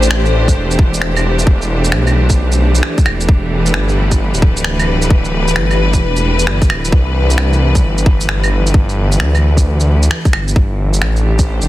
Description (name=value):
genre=future garage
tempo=132 BPM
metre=4/4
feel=swing 65% on 16ths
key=A minor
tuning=A4 = 439 Hz
part: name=clear symphonic string section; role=sustained chords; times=0.0-11.7 s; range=E3 to C5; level=-18 LUFS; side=equal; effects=sidechain pumping
part: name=swelling detuned saw bass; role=bass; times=0.0-11.7 s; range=D1 to D2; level=-14 LUFS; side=equal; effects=sidechain pumping
part: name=electronic shaker, finger snaps and claves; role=drums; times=0.0-11.7 s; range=none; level=-20 LUFS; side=right 1 dB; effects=soft clipping on snare
part: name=electronic kick drum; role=drums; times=0.5-11.5 s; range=none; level=-11 LUFS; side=equal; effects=overdrive
room=little or no reverb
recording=dense, heavily limited modern master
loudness=-11 LUFS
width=side -16 dB against mid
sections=0.0-11.7 A section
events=none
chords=0.0 Am7; 3.3 Em7; 6.9 C69; 10.6 Gsus4